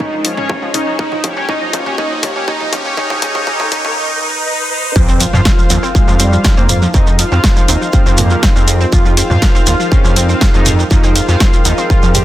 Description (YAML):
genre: melodic techno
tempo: 121 BPM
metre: 4/4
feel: straight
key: F minor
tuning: A4 = 440 Hz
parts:
  - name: wide unison lead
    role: melody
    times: 0.0-12.2 s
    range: G3 to G4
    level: -20 LUFS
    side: right 1 dB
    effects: lush chorus, sidechain pumping, digital delay
  - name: dark analog pad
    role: sustained chords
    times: 0.0-12.2 s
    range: Db3 to Ab4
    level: -26 LUFS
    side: right 1 dB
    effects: chorus, sidechain pumping
  - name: wide unison pluck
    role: arpeggios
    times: 0.0-12.2 s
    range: F3 to C5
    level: -21 LUFS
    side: right 1 dB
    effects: cassette tape, sidechain pumping, digital delay
  - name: deep house drum kit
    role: drums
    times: 0.0-12.2 s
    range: hi-hat, rim click, snare drum, toms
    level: -17 LUFS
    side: equal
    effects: overdrive
  - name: electronic kick drum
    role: drums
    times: 0.0-12.0 s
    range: none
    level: -13 LUFS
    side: equal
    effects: distortion
  - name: riser and impact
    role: sound effects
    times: 0.0-6.9 s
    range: none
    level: -22 LUFS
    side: equal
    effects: none
  - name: warbly tape-like pad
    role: texture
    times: 0.0-12.2 s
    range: Db4 to G5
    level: -30 LUFS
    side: equal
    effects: none
  - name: analog synth brass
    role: stabs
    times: 0.2-12.2 s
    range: Db4 to F5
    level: -21 LUFS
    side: left 2 dB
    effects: chorus, sidechain pumping, digital delay
  - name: gritty driven synth bass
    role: bass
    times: 5.0-12.2 s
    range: Eb2 to F2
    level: -14 LUFS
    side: equal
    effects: sidechain pumping
  - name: shekere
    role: percussion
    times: 5.0-12.2 s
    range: none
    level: -22 LUFS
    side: right 4 dB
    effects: none
room: light reverb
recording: dense, heavily limited modern master, high-pass filter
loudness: -10 LUFS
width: side -14 dB against mid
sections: 0.0-5.0 A section; 5.0-12.2 B section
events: build-up 0.0-5.0; drum fill 0.0-4.0; riser 0.0-5.0; filter sweep on synth arpeggio sound 0.0-5.0; filter sweep on analog synth pad 0.0-5.0; filter sweep 0.0-5.0; drop 5.0-12.2; impact 5.0-6.9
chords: 0.0 Dbsus2; 1.0 Eb; 5.0 Fm7